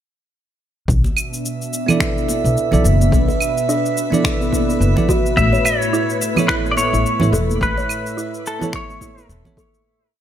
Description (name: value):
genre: organic downtempo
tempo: 107 BPM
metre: 4/4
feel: swing 57% on 16ths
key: B minor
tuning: A4 = 439 Hz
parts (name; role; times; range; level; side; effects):
- warm analog pad; sustained chords; 0.9-9.9 s; A2 to B4; -25 LUFS; equal; chorus, sidechain pumping
- upright bass; bass; 0.9-9.4 s; E1 to B1; -17 LUFS; equal; none
- electronic kick drum; drums; 0.9-9.7 s; none; -22 LUFS; left 1 dB; none
- electronic shaker, claves and finger snaps; drums; 0.9-9.8 s; none; -24 LUFS; right 1 dB; none
- drifting glass-harmonics texture; texture; 1.5-9.9 s; E5; -26 LUFS; right 5 dB; chorus, built-in reverb
- congas; percussion; 1.0-9.7 s; none; -23 LUFS; right 3 dB; none
- bell-like tine electric piano; accompaniment; 1.9-9.6 s; B3 to D5; -24 LUFS; right 2 dB; sidechain pumping, ping-pong delay
- buzzing kalimba; arpeggios; 3.1-9.7 s; A3 to C#5; -23 LUFS; equal; ping-pong delay
- clean lap steel guitar; melody; 5.4-9.3 s; A4 to E5; -21 LUFS; left 2 dB; tape echo
room: moderate echo chamber reverb, RT60 1.5 s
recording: none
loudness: -15 LUFS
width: side -10 dB against mid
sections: 0.9-9.9 groove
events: fade-out 6.9-9.9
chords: 0.9 Bm; 5.4 A